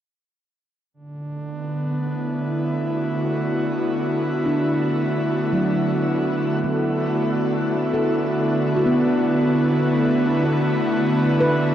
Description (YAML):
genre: ambient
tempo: 54 BPM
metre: 4/4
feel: straight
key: D major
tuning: A4 = 440 Hz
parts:
  - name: airy breathy pad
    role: sustained chords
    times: 0.9-11.7 s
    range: D3 to F#4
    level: -20 LUFS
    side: equal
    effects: chorus
  - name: bowed-like drone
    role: drone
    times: 1.5-11.7 s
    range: D3 to A3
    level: -28 LUFS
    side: equal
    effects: built-in reverb
  - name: handpan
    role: arpeggios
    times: 4.5-11.7 s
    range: F#3 to B4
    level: -24 LUFS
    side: equal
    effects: diffuse ambient delay
room: wet shimmer reverb, RT60 8.3 s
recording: worn, warbling old tape, cassette tape, warbly pitch drift, lossy compression artefacts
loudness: -19 LUFS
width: side -10 dB against mid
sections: 0.9-11.7 A section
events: none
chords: 0.9 D69